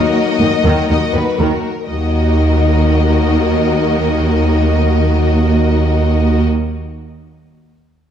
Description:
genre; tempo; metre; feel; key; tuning
cinematic; 121 BPM; 4/4; straight; Eb minor; A4 = 440 Hz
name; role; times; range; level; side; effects
warm symphonic violin section; melody; 0.0-6.4 s; Bb4 to Eb5; -22 LUFS; left 3 dB; none
warm symphonic violin section; second line; 0.0-6.4 s; Gb4 to Bb4; -23 LUFS; left 4 dB; none
warm symphonic viola section; accompaniment; 0.0-6.4 s; Eb3 to Bb3; -20 LUFS; right 1 dB; none
mellow French horn section; sustained chords; 0.0-6.4 s; Gb3 to Eb4; -20 LUFS; left 6 dB; none
dark symphonic cello section; bass; 0.4-6.4 s; Eb2; -17 LUFS; right 1 dB; none
warm symphonic double bass section; bass; 0.4-6.4 s; Eb2; -17 LUFS; right 3 dB; none
room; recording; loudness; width
moderate scoring stage reverb, RT60 1.9 s; none; -12 LUFS; side -9 dB against mid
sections
0.0-1.9 A section; 1.9-5.9 B section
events
none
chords
0.0 Ebm

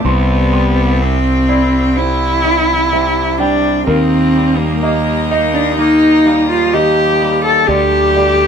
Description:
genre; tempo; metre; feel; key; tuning
post-rock; 63 BPM; 4/4; straight; unclear; A4 = 440 Hz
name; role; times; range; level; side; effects
muted cello; melody; 0.0-8.5 s; Bb3 to A4; -13 LUFS; equal; none
dark studio string section; sustained chords; 0.0-8.5 s; G4 to Bb5; -25 LUFS; left 2 dB; none
felt-muted upright piano; arpeggios; 0.0-8.5 s; Bb4 to C6; -22 LUFS; right 3 dB; none
twangy electric guitar; arpeggios; 0.0-8.5 s; C3 to G4; -21 LUFS; left 1 dB; none
fuzz fingered electric bass; bass; 0.0-8.5 s; C2 to Eb2; -17 LUFS; equal; overdrive
room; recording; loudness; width
light reverb; band playing live in one room; -10 LUFS; side -7 dB against mid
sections
0.0-8.5 A section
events
none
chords
0.1 Cmaj7; 3.9 Eb; 7.7 Dsus4

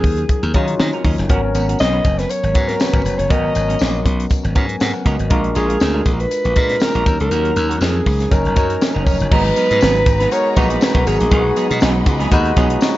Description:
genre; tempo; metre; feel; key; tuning
polished 1980s jazz-funk pop; 120 BPM; 4/4; swing 54% on 16ths; G# dorian; A4 = 440 Hz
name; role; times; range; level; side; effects
warm alto saxophone; melody; 0.0-12.1 s; G#4 to D#5; -20 LUFS; equal; plate reverb
barky tine electric piano; accompaniment; 0.0-13.0 s; F#3 to A#5; -22 LUFS; left 2 dB; overdrive, lush chorus, plate reverb
glassy slap bass; bass; 0.0-12.8 s; E#1 to D#3; -19 LUFS; equal; none
crisp fusion drum kit; drums; 0.0-12.9 s; crash cymbal, hi-hat, kick drum, snare drum; -18 LUFS; equal; gated reverb
semi-hollow electric guitar; riff; 0.2-13.0 s; F#3 to B4; -25 LUFS; right 3 dB; analog chorus
tambourine; percussion; 1.6-12.9 s; none; -36 LUFS; left 5 dB; none
warm studio string section; sustained chords; 9.3-13.0 s; G#4 to B5; -29 LUFS; left 2 dB; none
room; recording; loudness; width
light reverb; nothing above 7.6 kHz; -14 LUFS; side -16 dB against mid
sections
0.0-9.3 A section; 9.3-13.0 B section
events
none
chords
0.0 D#m7; 1.3 G#m11; 5.3 A#7; 7.1 D#m7; 8.3 F#6; 9.3 G#m9; 11.3 B6

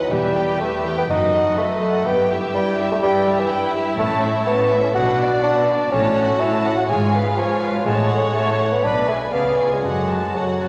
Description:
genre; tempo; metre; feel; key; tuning
cinematic, playful, whimsical film cue; 124 BPM; 4/4; straight; E minor, F# minor from 4.0 s; A4 = 438 Hz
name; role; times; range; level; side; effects
rich chamber violin section; melody; 0.0-10.7 s; D5 to B5; -30 LUFS; equal; none
warm chamber violin section; second line; 0.0-10.7 s; C#4 to D#5; -31 LUFS; equal; none
mellow bassoon; accompaniment; 0.0-10.7 s; E3 to G#4; -22 LUFS; equal; none
warm studio viola section; accompaniment; 0.0-10.7 s; D4 to C#5; -30 LUFS; equal; none
concert harp; arpeggios; 0.0-10.7 s; F#2 to D5; -30 LUFS; equal; none
warm studio cello section; bass; 0.0-10.7 s; E2 to C#3; -29 LUFS; equal; none
dark symphonic double bass section; bass; 0.1-10.3 s; E1 to C#2; -32 LUFS; equal; none
room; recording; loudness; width
wet scoring stage reverb, RT60 1.8 s; none; -19 LUFS; mono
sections
0.0-10.7 A section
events
none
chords
0.1 Em; 1.1 B7/F#; 2.1 Em/G; 4.0 A; 5.0 Bm; 5.9 F#m/A; 6.9 C#7/G#; 7.9 F#m/A; 8.8 G#dim/B; 9.3 C#7b9; 9.8 F#m

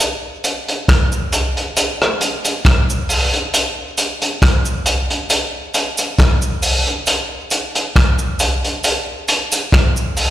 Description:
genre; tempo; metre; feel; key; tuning
reggae; 68 BPM; 4/4; swing 54% on 16ths; none; none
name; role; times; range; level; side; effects
crunchy breakbeat drum kit; drums; 0.0-10.3 s; hi-hat, kick drum, rim click; -15 LUFS; equal; none
cabasa; percussion; 0.0-10.3 s; none; -26 LUFS; right 5 dB; dub echo, slapback echo
room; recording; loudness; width
little or no reverb; live gig heard through the venue's PA, recital hall reverb; -14 LUFS; side -13 dB against mid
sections
0.0-10.3 A section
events
none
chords
none

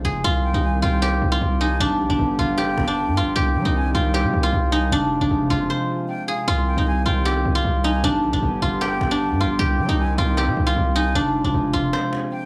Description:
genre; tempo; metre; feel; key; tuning
hip hop, trap; 154 BPM; 4/4; half-time; C harmonic minor; A4 = 437 Hz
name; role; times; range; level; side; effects
guzheng; melody; 0.0-12.5 s; D4 to C5; -24 LUFS; equal; tape echo
warm analog pad; sustained chords; 0.0-12.5 s; C3 to G4; -30 LUFS; equal; chorus
distorted 808-style bass; bass; 0.0-11.9 s; F1 to G3; -24 LUFS; equal; distortion
cajon; drums; 0.0-12.5 s; none; -40 LUFS; equal; none
breathy silver concert flute; second line; 0.4-12.5 s; F5 to Ab5; -35 LUFS; equal; tape echo
room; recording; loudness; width
small room ambience; none; -21 LUFS; mono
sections
0.2-12.5 A section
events
break 5.7-6.5, 11.9-12.5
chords
0.2 Cm; 1.8 G; 3.4 Cm; 4.9 Fm; 6.5 Cm; 8.0 G; 9.6 Cm; 11.2 Fm

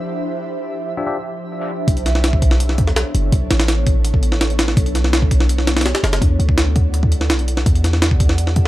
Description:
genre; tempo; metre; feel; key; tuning
drum and bass, jungle; 166 BPM; 4/4; straight; B minor; A4 = 440 Hz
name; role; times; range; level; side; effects
ethereal airy pad; sustained chords; 0.0-8.7 s; F3 to E5; -26 LUFS; equal; ensemble chorus, built-in reverb
twinkling granular texture; texture; 0.0-1.9 s; E4 to E5; -38 LUFS; right 2 dB; built-in reverb
bell-like tine electric piano; stabs; 1.0-1.2 s; D4 to E5; -27 LUFS; left 2 dB; vintage 12-bit sampler grit, low-pass filter, dub echo
warm 808-style bass; bass; 1.9-8.7 s; F#1 to E2; -17 LUFS; equal; none
jungle sampler-style drum kit; drums; 1.9-8.7 s; hi-hat, kick drum, snare drum; -16 LUFS; equal; none
room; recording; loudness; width
light reverb; dark, warm production; -14 LUFS; side -16 dB against mid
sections
0.0-1.9 A section; 1.9-8.7 B section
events
drop 1.9-8.7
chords
0.0 Dm11; 1.9 Bm11; 6.2 Em11

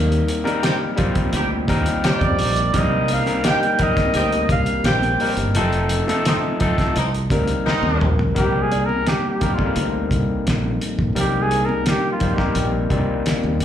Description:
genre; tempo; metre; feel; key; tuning
lush 1970s-style soul; 86 BPM; 4/4; straight; C minor; A4 = 440 Hz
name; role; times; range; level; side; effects
overdriven tine electric piano; accompaniment; 0.0-13.6 s; F3 to C5; -22 LUFS; left 3 dB; lush chorus, slapback echo
modern bright fingered electric bass; bass; 0.0-13.6 s; F1 to F2; -21 LUFS; equal; none
cloth-damped thuddy drum kit; drums; 0.1-13.6 s; hi-hat, kick drum, snare drum, toms; -24 LUFS; equal; none
congas; percussion; 0.5-13.6 s; none; -29 LUFS; right 4 dB; slapback echo
warm horn section; stabs; 0.6-8.2 s; A3 to G4; -26 LUFS; equal; slapback echo
clear flugelhorn; melody; 2.1-13.6 s; F4 to G5; -22 LUFS; right 2 dB; slapback echo
celesta; texture; 3.4-10.3 s; Bb4 to Eb5; -34 LUFS; right 3 dB; none
room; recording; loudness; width
small room ambience; live gig heard through the venue's PA, club reverb; -17 LUFS; side -10 dB against mid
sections
0.0-8.4 A section; 8.4-13.6 B section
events
drum fill 7.7-8.4; flugelhorn solo 8.4-13.6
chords
0.0 Eb6; 2.7 Cm7; 5.6 F7; 7.0 Cm7

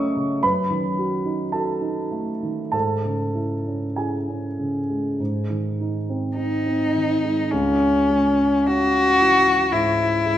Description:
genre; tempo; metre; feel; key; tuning
classical, romantic duo for cello and grand piano; 48-58 BPM; 4/4; rubato; C# minor; A4 = 445 Hz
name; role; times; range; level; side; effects
dark concert grand piano; accompaniment; 0.0-10.4 s; C#2 to E6; -23 LUFS; right 1 dB; none
rich cello; melody; 6.4-10.4 s; C#4 to F#4; -17 LUFS; left 2 dB; none
room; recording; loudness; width
wet recital hall reverb, RT60 1.6 s; none; -19 LUFS; side -12 dB against mid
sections
0.0-7.5 A section; 7.5-10.4 B section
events
none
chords
0.4 D#dim/F#; 2.7 C#m/G#; 5.2 G#; 7.5 C#m

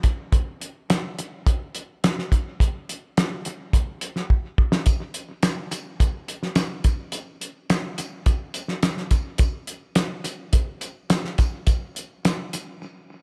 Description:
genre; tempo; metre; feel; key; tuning
rock; 106 BPM; 4/4; straight; none; none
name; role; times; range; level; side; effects
cloth-damped thuddy drum kit; drums; 0.0-12.7 s; hi-hat, kick drum, snare drum; -24 LUFS; equal; analog delay
tambourine; percussion; 4.9-12.7 s; none; -44 LUFS; equal; analog delay
room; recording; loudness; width
little or no reverb; echo-heavy mix; -24 LUFS; mono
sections
0.0-13.2 A section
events
drum fill 4.3-4.9; break 12.8-13.2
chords
none

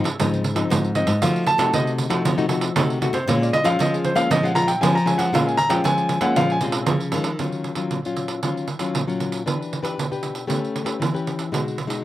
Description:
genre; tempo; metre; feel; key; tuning
samba and choro; 116 BPM; 4/4; straight; Bb minor; A4 = 440 Hz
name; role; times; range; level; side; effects
nylon-string guitar; accompaniment; 0.0-12.0 s; Ab2 to B4; -24 LUFS; left 4 dB; slapback echo
nylon-string guitar; bass; 0.0-7.4 s; Ab2 to Bb3; -24 LUFS; equal; none
pandeiro; percussion; 0.1-12.0 s; none; -24 LUFS; right 4 dB; none
warm grand piano; melody; 1.0-6.6 s; Ab4 to Bb5; -21 LUFS; equal; slapback echo
room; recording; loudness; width
little or no reverb; recorded outdoors, with no room sound; -19 LUFS; side -14 dB against mid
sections
0.0-7.4 A section; 7.4-12.0 B section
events
grand piano solo 0.0-7.4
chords
0.0 Dbmaj9; 1.2 F7b9; 3.3 Bbm7; 7.4 Ebm9; 9.5 Em7; 10.5 A9; 11.5 B6

